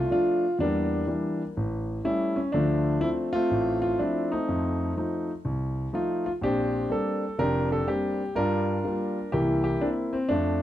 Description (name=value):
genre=solo jazz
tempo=124 BPM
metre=4/4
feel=swing 66% on 8ths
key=F major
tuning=A4 = 441 Hz
part: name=warm concert grand piano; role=solo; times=0.0-10.6 s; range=F1 to Bb4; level=-24 LUFS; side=equal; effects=none
room=small room ambience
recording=dry, close 1970s-style studio recording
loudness=-24 LUFS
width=side -12 dB against mid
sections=0.0-10.6 A section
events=none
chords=0.0 F6; 0.6 Em7b5; 1.6 A7; 2.5 Dm9; 4.5 F7; 6.4 Bb69; 8.3 Gm7; 9.3 C7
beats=0.10 | 0.58 1.07 1.56 2.04 | 2.53 3.01 3.50 3.98 | 4.47 4.96 5.44 5.92 | 6.41 6.89 7.38 7.86 | 8.35 8.83 9.32 9.80 | 10.29